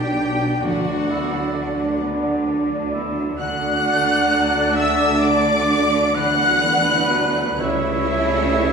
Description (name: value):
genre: classical, slow romantic movement for symphony orchestra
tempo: 37-46 BPM (dotted quarters)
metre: 6/8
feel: rubato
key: B minor, D major from 3.4 s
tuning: A4 = 439 Hz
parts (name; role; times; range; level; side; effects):
- rich symphonic violin section; melody; 0.0-8.7 s; E5 to F#6; -27 LUFS; left 2 dB; none
- bright concert flute; second line; 0.0-8.7 s; E5 to F#6; -24 LUFS; left 4 dB; none
- warm oboe; second line; 0.0-8.7 s; E4 to F#5; -26 LUFS; right 3 dB; none
- warm symphonic violin section; second line; 0.0-8.7 s; E4 to F#5; -27 LUFS; left 1 dB; none
- warm bassoon; accompaniment; 0.0-8.7 s; B3 to F#4; -29 LUFS; right 4 dB; none
- warm symphonic viola section; accompaniment; 0.0-8.7 s; D3 to E4; -29 LUFS; right 2 dB; none
- mellow trombone section; sustained chords; 0.0-8.7 s; B2 to G3; -30 LUFS; right 4 dB; none
- warm French horn section; sustained chords; 0.0-8.7 s; G3 to E4; -26 LUFS; equal; none
- concert harp; arpeggios; 0.0-8.7 s; B2 to D6; -35 LUFS; left 1 dB; none
- warm trumpet; stabs; 0.0-8.7 s; B4 to D5; -25 LUFS; equal; none
- dark symphonic double bass section; bass; 0.0-8.7 s; B1 to D2; -31 LUFS; right 2 dB; none
- mellow tuba; bass; 0.0-8.7 s; B1 to D2; -28 LUFS; right 4 dB; none
- rich symphonic cello section; bass; 0.0-8.7 s; B2 to D3; -29 LUFS; right 1 dB; none
- timpani; percussion; 0.6-2.0 s; D3; -31 LUFS; equal; none
room: wet recital hall reverb, RT60 1.4 s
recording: recorded in a church or concert hall, small room ambience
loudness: -17 LUFS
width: side -5 dB against mid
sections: 0.0-8.7 A section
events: none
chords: 0.0 Bm; 0.7 Bm/D; 3.4 D; 6.2 Em7/D; 7.6 A7/C#